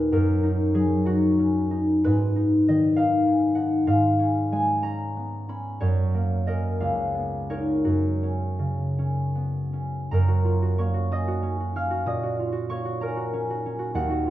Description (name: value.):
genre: classical, solo harp piece.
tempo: 51-66 BPM (dotted quarters).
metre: 6/8.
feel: rubato.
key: F# major.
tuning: A4 = 440 Hz.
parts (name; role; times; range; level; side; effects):
concert harp; solo; 0.0-14.3 s; C#2 to E#6; -21 LUFS; equal; none.
room: moderate stone room reverb, RT60 1.0 s.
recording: heard from further back in the room, nothing above 7.5 kHz.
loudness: -22 LUFS.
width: side -14 dB against mid.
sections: 0.0-10.1 A section; 10.1-14.3 A section.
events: none.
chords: 0.1 D#m/F#; 2.1 G#m7; 3.9 C#7/G#; 5.8 F#; 6.8 C#13; 7.9 F#; 12.1 F#/A#.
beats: | 0.12 1.05 | 2.06 2.99 | 3.90 4.85 | 5.82 6.81 | 7.87 8.98 | 10.11 11.11 | 12.08 13.01 | 13.94.